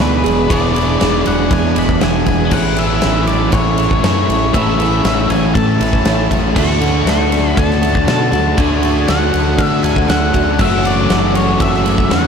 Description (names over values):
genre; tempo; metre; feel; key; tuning
rock, shoegaze and dream pop; 119 BPM; 4/4; straight; unclear; A4 = 440 Hz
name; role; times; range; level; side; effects
octave-fuzz lead guitar; melody; 0.0-12.3 s; B4 to C#6; -20 LUFS; left 3 dB; distortion, ping-pong delay
picked twelve-string acoustic guitar; arpeggios; 0.0-12.3 s; E3 to G#4; -24 LUFS; right 5 dB; none
biting overdriven guitar; riff; 0.0-12.3 s; A2 to G#4; -20 LUFS; left 5 dB; wide subtle chorus
biting overdriven guitar; riff; 0.0-12.3 s; A2 to G#4; -21 LUFS; left 1 dB; none
twelve-string electric guitar; riff; 0.0-12.3 s; E2 to F#4; -20 LUFS; right 6 dB; reverse reverb
growling fingered electric bass; bass; 0.0-12.3 s; E1 to D3; -19 LUFS; equal; overdrive
huge arena drum kit; drums; 0.0-12.2 s; crash cymbal, kick drum, ride cymbal, snare drum; -18 LUFS; equal; none
room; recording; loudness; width
wet cathedral reverb, RT60 6.3 s; dreamy mix soaked in reverb; -12 LUFS; side -6 dB against mid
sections
0.0-12.3 A section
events
none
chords
0.0 E7; 2.5 Amaj7; 6.6 Dmaj7; 10.6 F#m7